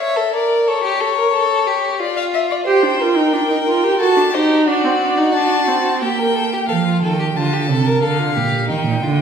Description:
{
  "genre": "classical, baroque-style fugue for string quartet",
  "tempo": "90 BPM",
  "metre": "3/4",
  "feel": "straight",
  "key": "G minor",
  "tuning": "A4 = 440 Hz",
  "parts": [
    { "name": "rich violin", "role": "melody", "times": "0.0-9.2 s", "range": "C5 to A5", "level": "-20 LUFS", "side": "left 5 dB", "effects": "none" },
    { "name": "rich violin", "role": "second line", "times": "0.0-9.2 s", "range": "Eb4 to C#5", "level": "-19 LUFS", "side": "equal", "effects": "none" },
    { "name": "clear viola", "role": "accompaniment", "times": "2.7-6.7 s", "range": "Bb3 to G4", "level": "-16 LUFS", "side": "right 2 dB", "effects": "none" },
    { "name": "clear cello", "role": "bass", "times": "6.7-9.2 s", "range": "Bb2 to F3", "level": "-17 LUFS", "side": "right 4 dB", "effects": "none" }
  ],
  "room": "wet recital hall reverb, RT60 1.5 s",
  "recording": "heard from further back in the room",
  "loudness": "-14 LUFS",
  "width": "side -7 dB against mid",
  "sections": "0.0-6.7 A section; 6.7-9.2 B section",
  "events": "none",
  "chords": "0.0 Aadd11; 0.7 A7; 2.0 Dm/F; 2.7 Gm; 4.0 F#dim7; 4.7 D7; 6.0 Gm/Bb; 6.7 F; 8.0 Bbmaj7/D; 8.7 Eb"
}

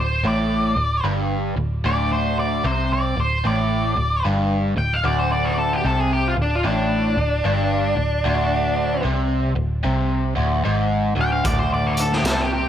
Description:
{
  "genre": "blues rock power trio and southern rock",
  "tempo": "75 BPM",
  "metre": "4/4",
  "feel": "swing 65% on 8ths",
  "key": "unclear",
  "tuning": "A4 = 440 Hz",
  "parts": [
    { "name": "octave-fuzz lead guitar", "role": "melody", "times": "0.0-12.7 s", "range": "D4 to G5", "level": "-23 LUFS", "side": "equal", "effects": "distortion" },
    { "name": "overdriven electric guitar", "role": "riff", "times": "0.0-12.7 s", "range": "D2 to C3", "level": "-22 LUFS", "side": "equal", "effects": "none" },
    { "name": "vintage muted picked electric bass", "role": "bass", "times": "0.0-12.7 s", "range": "D1 to C2", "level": "-23 LUFS", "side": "equal", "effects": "none" },
    { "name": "raw garage drum kit", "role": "drums", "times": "11.4-12.5 s", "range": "hi-hat, kick drum, snare drum", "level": "-24 LUFS", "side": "equal", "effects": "none" }
  ],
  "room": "light reverb",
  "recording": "none",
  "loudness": "-18 LUFS",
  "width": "side -10 dB against mid",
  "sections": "0.0-12.7 A section",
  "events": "none",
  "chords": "0.0 D5"
}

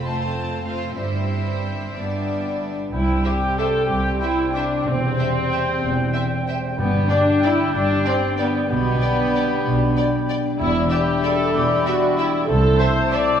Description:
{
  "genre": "classical",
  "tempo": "188 BPM",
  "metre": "3/4",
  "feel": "uneven beats, rubato",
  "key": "C major",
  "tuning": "A4 = 440 Hz",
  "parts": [
    { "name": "warm studio violin section", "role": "melody", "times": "0.0-13.2 s", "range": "E5 to A5", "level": "-37 LUFS", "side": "left 3 dB", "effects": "none" },
    { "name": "rich studio violin section", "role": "second line", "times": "0.0-13.2 s", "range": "D4 to E5", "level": "-31 LUFS", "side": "left 2 dB", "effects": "none" },
    { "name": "warm studio viola section", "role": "accompaniment", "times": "0.0-13.4 s", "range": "G3 to D5", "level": "-23 LUFS", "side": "equal", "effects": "none" },
    { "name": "concert harp", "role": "arpeggios", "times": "0.0-13.4 s", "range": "E2 to B5", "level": "-27 LUFS", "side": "left 5 dB", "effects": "none" },
    { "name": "dark studio cello section", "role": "bass", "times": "0.0-12.7 s", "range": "C2 to B2", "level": "-27 LUFS", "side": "right 2 dB", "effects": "none" },
    { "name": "dark studio double bass section", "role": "bass", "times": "0.0-12.7 s", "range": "E1 to C2", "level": "-27 LUFS", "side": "right 3 dB", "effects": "none" },
    { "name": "mellow clarinet", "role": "second line", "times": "2.9-13.4 s", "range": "C5 to D5", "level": "-30 LUFS", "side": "left 3 dB", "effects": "none" },
    { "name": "silver concert flute", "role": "second line", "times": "2.9-13.4 s", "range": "G5 to B5", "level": "-30 LUFS", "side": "equal", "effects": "none" },
    { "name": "warm oboe", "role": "second line", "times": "2.9-13.4 s", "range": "E5 to G5", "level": "-30 LUFS", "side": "equal", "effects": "none" },
    { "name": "mellow bassoon", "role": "accompaniment", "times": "2.9-13.4 s", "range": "G3 to A3", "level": "-30 LUFS", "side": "right 1 dB", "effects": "none" },
    { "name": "mellow French horn section", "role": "sustained chords", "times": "2.9-13.4 s", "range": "C4 to G4", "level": "-29 LUFS", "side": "left 4 dB", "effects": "none" },
    { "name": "timpani", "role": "percussion", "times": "6.8-7.2 s", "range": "G2", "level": "-29 LUFS", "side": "equal", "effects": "none" }
  ],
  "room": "moderate scoring stage reverb, RT60 1.7 s",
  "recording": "small room ambience",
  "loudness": "-18 LUFS",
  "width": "side -8 dB against mid",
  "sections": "0.0-2.9 A section; 2.9-13.4 B section",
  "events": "none",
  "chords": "0.0 F; 1.0 C/G; 2.0 G; 2.9 C; 4.9 C/E; 6.8 G; 8.7 G/B; 10.6 Em7; 12.5 Am/C"
}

